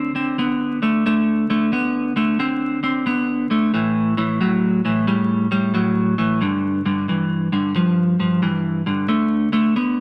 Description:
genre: blues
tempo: 90 BPM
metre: 4/4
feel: swing 66% on 8ths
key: D mixolydian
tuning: A4 = 440 Hz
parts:
  - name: clean electric guitar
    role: solo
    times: 0.0-10.0 s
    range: G2 to C4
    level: -20 LUFS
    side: equal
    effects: spring reverb
room: moderate studio reverb, RT60 0.7 s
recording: vinyl crackle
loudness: -20 LUFS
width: mono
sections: 0.0-10.0 A section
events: none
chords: 0.0 D5; 3.7 A5; 6.4 G5; 9.1 D5

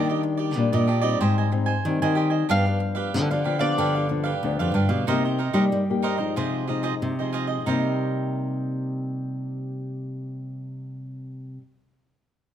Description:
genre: samba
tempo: 93 BPM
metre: 4/4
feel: straight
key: C minor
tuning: A4 = 439 Hz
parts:
  - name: mandolin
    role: melody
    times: 0.0-4.7 s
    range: D5 to F5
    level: -29 LUFS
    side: equal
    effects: none
  - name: cavaquinho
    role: accompaniment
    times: 0.0-11.6 s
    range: D4 to Ab5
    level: -28 LUFS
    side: right 8 dB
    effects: none
  - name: nylon-string guitar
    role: accompaniment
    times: 0.0-11.7 s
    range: G2 to G4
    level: -28 LUFS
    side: left 6 dB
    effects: none
  - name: nylon-string guitar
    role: bass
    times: 0.0-11.6 s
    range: D2 to G3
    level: -25 LUFS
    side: equal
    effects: none
room: light reverb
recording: close, detailed microphones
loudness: -22 LUFS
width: side -10 dB against mid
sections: 0.0-5.1 A section; 5.1-7.7 B section; 7.7-10.3 C section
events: none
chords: 0.0 Ebmaj7; 1.2 Abmaj7; 2.5 G7; 5.1 Cm7; 6.4 Fm7/C; 7.7 Cm7

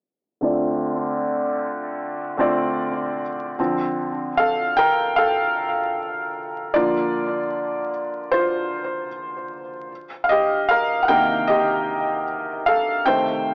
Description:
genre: hip hop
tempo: 76 BPM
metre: 4/4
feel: swing 63% on 16ths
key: unclear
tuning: A4 = 440 Hz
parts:
  - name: felt-muted upright piano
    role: solo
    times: 0.4-13.5 s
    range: C3 to G5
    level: -22 LUFS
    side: equal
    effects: cassette tape, tape echo
room: light reverb, studio reverb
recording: dry, gritty hardware recording, vinyl crackle, low-pass filter, small speaker sound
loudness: -22 LUFS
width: mono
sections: 0.4-3.6 A section; 3.6-13.5 B section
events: filter sweep 0.4-3.6; felt piano solo 3.6-13.5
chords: 0.4 Dm7; 9.9 Cm7

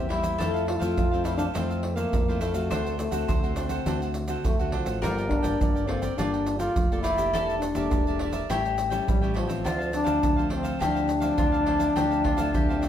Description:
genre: samba and choro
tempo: 104 BPM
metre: 4/4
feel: straight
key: D minor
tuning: A4 = 440 Hz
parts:
  - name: breathy trombone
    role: melody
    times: 0.0-12.9 s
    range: F3 to F4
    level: -27 LUFS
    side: left 1 dB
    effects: none
  - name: mandolin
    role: second line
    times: 0.0-12.9 s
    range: F4 to C5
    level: -33 LUFS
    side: left 6 dB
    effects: none
  - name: cavaquinho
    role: accompaniment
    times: 0.0-12.9 s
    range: D4 to G5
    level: -36 LUFS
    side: right 5 dB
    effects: none
  - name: nylon-string guitar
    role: accompaniment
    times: 0.0-12.9 s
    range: G2 to A4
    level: -34 LUFS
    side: left 2 dB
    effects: none
  - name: fingered electric bass with an envelope filter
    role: bass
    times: 0.0-12.9 s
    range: E1 to F2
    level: -31 LUFS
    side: equal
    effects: none
  - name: pandeiro, tube shaker and surdo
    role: percussion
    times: 0.1-12.9 s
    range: none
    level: -29 LUFS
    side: right 1 dB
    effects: none
room: wet studio reverb, RT60 0.9 s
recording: heard from further back in the room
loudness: -23 LUFS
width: side -10 dB against mid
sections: 0.0-12.9 A section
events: none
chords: 0.4 Fmaj7; 2.7 D7; 5.0 Gm9; 7.3 Em7b5; 8.5 A7; 9.7 Dm9

